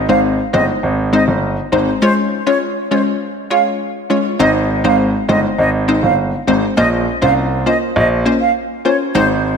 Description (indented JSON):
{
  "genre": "dancehall",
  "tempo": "101 BPM",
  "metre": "4/4",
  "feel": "straight",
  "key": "Ab major",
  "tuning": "A4 = 441 Hz",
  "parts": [
    { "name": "analog pluck", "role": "accompaniment", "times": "0.0-9.6 s", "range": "Ab3 to Db5", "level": "-16 LUFS", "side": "left 2 dB", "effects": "chorus" },
    { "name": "warm grand piano", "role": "bass", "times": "0.0-9.6 s", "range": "G1 to C2", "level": "-17 LUFS", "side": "right 1 dB", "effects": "none" },
    { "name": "mellow concert flute", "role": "melody", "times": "0.1-9.3 s", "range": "C5 to F5", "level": "-18 LUFS", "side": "right 2 dB", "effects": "ping-pong delay" }
  ],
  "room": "moderate lush hall reverb, RT60 2.1 s",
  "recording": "dreamy mix soaked in reverb",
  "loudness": "-13 LUFS",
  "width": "side -6 dB against mid",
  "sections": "0.0-4.4 A section; 4.4-9.6 B section",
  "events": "none",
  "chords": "0.0 Ab; 2.0 Db; 4.4 Ab; 6.8 Bbmadd9",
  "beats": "0.24 0.83 1.43 | 2.02 2.62 3.21 3.80 | 4.40 4.99 5.58 6.18 | 6.77 7.37 7.96 8.56 | 9.15"
}